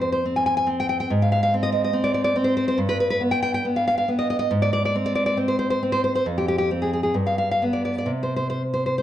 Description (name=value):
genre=romantic piece for solo classical guitar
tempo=60-73 BPM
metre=2/4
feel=rubato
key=unclear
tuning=A4 = 437 Hz
part: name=nylon-string guitar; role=solo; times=0.0-9.0 s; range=F2 to Ab5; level=-20 LUFS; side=equal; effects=none
room=moderate recital hall reverb, RT60 1.6 s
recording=dark, warm production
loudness=-20 LUFS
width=side -12 dB against mid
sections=0.0-9.0 A section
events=none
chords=0.0 F5; 1.1 Ab6; 2.8 G; 4.5 Ab; 6.2 Fmadd9; 7.1 G; 8.1 N.C.